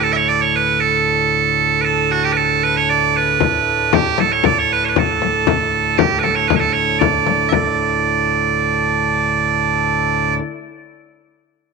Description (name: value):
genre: medieval dance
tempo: 116 BPM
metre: 2/4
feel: straight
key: unclear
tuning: A4 = 437 Hz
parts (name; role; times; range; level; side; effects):
- loud bright bagpipes; melody; 0.0-10.3 s; F#4 to E5; -16 LUFS; right 8 dB; none
- pipe organ, plenum; drone; 0.0-10.4 s; D2 to A2; -22 LUFS; left 2 dB; none
- frame drum; percussion; 3.4-7.8 s; none; -18 LUFS; left 12 dB; none
room: wet spring reverb, RT60 1.8 s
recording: 1960s-style stereo with parts hard left and right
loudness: -14 LUFS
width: side -4 dB against mid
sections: 0.0-7.5 A section; 7.5-9.6 B section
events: none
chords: none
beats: | 0.28 0.80 | 1.32 1.84 | 2.37 2.88 | 3.40 3.92 | 4.44 4.96 | 5.47 5.99 | 6.50 7.02 | 7.53 8.05 | 8.56 9.07